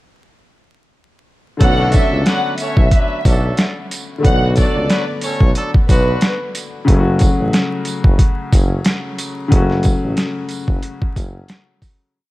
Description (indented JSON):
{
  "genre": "hip hop, boom-bap hip-hop",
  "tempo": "91 BPM",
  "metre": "4/4",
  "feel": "swing 55% on 16ths",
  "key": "F# minor",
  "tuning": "A4 = 440 Hz",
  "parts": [
    { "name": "dark studio violin section", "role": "melody", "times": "1.6-6.4 s", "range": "B4 to F#5", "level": "-21 LUFS", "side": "equal", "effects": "high-pass filter, low-pass filter, slapback echo" },
    { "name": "warm upright piano", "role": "accompaniment", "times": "1.6-12.2 s", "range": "C#3 to F#4", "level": "-21 LUFS", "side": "left 2 dB", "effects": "cassette tape, high-pass filter, low-pass filter" },
    { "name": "warm horn section", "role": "stabs", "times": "1.6-6.4 s", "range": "D3 to C#5", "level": "-24 LUFS", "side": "right 1 dB", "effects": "high-pass filter, low-pass filter, slapback echo" },
    { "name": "warm tuba", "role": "bass", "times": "1.6-11.4 s", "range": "F#1 to C#2", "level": "-19 LUFS", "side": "equal", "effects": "none" },
    { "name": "boom bap sampler-style drum kit", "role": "drums", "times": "1.6-12.0 s", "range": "hi-hat, kick drum, snare drum", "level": "-14 LUFS", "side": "equal", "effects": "overdrive, vintage 12-bit sampler grit" },
    { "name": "tambourine", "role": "percussion", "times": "1.9-12.0 s", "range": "none", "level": "-32 LUFS", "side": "right 6 dB", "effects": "none" }
  ],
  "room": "small room ambience",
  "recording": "vinyl crackle",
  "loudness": "-13 LUFS",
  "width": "side -18 dB against mid",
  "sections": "1.6-12.2 hook",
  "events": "fade-out 9.5-12.2",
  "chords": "1.6 Bm7; 6.9 F#m"
}